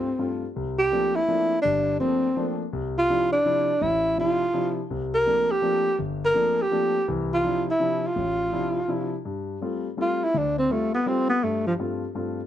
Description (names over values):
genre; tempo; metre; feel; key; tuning
jazz; 166 BPM; 3/4; swing 65% on 8ths; C mixolydian, G mixolydian from 9.2 s; A4 = 440 Hz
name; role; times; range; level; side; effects
breathy tenor saxophone; melody; 0.0-11.7 s; F3 to Bb4; -22 LUFS; right 1 dB; none
warm concert grand piano; accompaniment; 0.0-12.4 s; G1 to F4; -28 LUFS; left 3 dB; none
room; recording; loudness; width
light reverb; close, detailed microphones; -22 LUFS; side -11 dB against mid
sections
0.5-9.2 A section; 9.2-12.5 B section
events
tenor saxophone solo 9.2-12.5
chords
0.0 F; 0.5 C13sus4; 2.7 Dmadd9/C; 4.9 C13sus4; 7.1 Dmadd9/C; 9.2 G9sus4; 11.4 F/G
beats
0.18 | 0.55 0.91 1.27 | 1.63 2.00 2.36 | 2.72 3.08 3.44 | 3.81 4.17 4.53 | 4.89 5.25 5.62 | 5.98 6.34 6.70 | 7.06 7.43 7.79 | 8.15 8.51 8.87 | 9.24 9.60 9.96 | 10.32 10.69 11.05 | 11.41 11.77 12.14